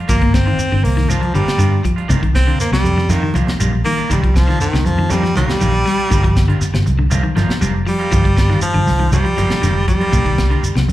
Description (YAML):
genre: afrobeat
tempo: 120 BPM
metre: 4/4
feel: straight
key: C minor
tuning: A4 = 440 Hz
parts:
  - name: electric guitar at the edge of break-up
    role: arpeggios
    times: 0.0-10.9 s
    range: Bb2 to Bb3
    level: -22 LUFS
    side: left 4 dB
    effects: none
  - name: electric guitar at the edge of break-up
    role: stabs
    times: 0.0-10.9 s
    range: Eb3 to F4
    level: -27 LUFS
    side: right 6 dB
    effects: slapback echo
  - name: bright baritone saxophone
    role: melody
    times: 0.1-10.9 s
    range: Eb3 to C4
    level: -19 LUFS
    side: right 1 dB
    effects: slapback echo
  - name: fingered electric bass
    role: bass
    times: 0.1-10.9 s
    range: F1 to G2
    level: -16 LUFS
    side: equal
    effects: none
  - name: tight funk drum kit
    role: drums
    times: 0.1-10.9 s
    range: hi-hat, kick drum, snare drum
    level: -20 LUFS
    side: equal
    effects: none
  - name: shekere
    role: percussion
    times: 0.1-10.9 s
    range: none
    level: -24 LUFS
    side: right 1 dB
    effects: none
  - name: claves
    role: percussion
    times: 0.3-10.9 s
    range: none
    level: -37 LUFS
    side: equal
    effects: none
  - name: congas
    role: percussion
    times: 2.1-10.9 s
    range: none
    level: -24 LUFS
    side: right 1 dB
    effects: none
room: small room ambience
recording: live gig heard through the venue's PA, club reverb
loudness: -13 LUFS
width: side -14 dB against mid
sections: 0.0-10.9 A section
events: baritone saxophone solo 0.0-10.9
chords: 0.0 Gm7; 2.1 Cm11; 6.1 Gm7; 10.1 Cm11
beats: | 0.09 0.59 1.09 1.59 | 2.10 2.60 3.10 3.60 | 4.10 4.61 5.11 5.61 | 6.11 6.61 7.12 7.62 | 8.12 8.62 9.13 9.63 | 10.13 10.63